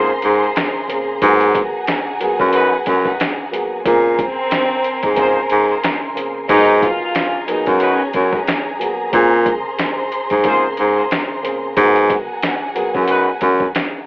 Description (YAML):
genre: hip hop, boom-bap hip-hop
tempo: 91 BPM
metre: 4/4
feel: swing 55% on 16ths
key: Bb minor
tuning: A4 = 440 Hz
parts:
  - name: dark upright piano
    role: accompaniment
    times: 0.0-14.0 s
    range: Db3 to Bb4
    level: -24 LUFS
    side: equal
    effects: high-pass filter, low-pass filter
  - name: warm studio string section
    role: sustained chords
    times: 0.0-14.1 s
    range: Ab4 to C6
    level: -23 LUFS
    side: equal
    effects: high-pass filter, low-pass filter
  - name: mellow trumpet section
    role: stabs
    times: 0.0-13.3 s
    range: Eb4 to C5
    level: -21 LUFS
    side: equal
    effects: high-pass filter, low-pass filter, digital delay
  - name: warm baritone saxophone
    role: bass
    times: 0.0-13.7 s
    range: Gb2 to Bb2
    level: -13 LUFS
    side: equal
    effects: none
  - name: trip hop sampler-style drum kit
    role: drums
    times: 0.2-13.9 s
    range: hi-hat, kick drum, snare drum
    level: -22 LUFS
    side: equal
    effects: overdrive
  - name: warm studio violin section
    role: melody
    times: 4.2-8.6 s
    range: C4 to F5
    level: -21 LUFS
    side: equal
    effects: high-pass filter, low-pass filter
room: light reverb, small room reverb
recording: rough home demo mix, vinyl crackle, telephone sound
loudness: -14 LUFS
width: side -26 dB against mid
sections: 0.0-14.1 A section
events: none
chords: 0.0 Bbm9; 1.2 Abm9; 3.9 Bbm9; 6.5 Abm9; 9.1 Bbm9; 11.8 Abm9